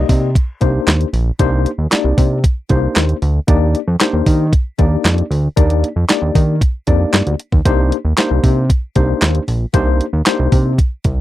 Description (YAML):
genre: early-eighties boogie funk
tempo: 115 BPM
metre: 4/4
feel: straight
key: C minor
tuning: A4 = 440 Hz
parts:
  - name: tine electric piano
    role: accompaniment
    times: 0.0-10.7 s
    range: Bb3 to Eb5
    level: -18 LUFS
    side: left 4 dB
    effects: overdrive, medium stereo tremolo
  - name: fat analog bass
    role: bass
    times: 0.0-11.2 s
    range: Bb1 to Eb3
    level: -15 LUFS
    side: equal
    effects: none
  - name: crisp 8-bit digital drum machine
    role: drums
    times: 0.1-11.2 s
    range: handclaps, hi-hat, kick drum, snare drum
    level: -14 LUFS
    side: equal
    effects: none
room: little or no reverb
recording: dry, close 1970s-style studio recording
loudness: -12 LUFS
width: side -15 dB against mid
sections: 0.0-11.2 A section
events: none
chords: 0.0 Cm9; 3.5 Ebmaj7; 7.7 Cm9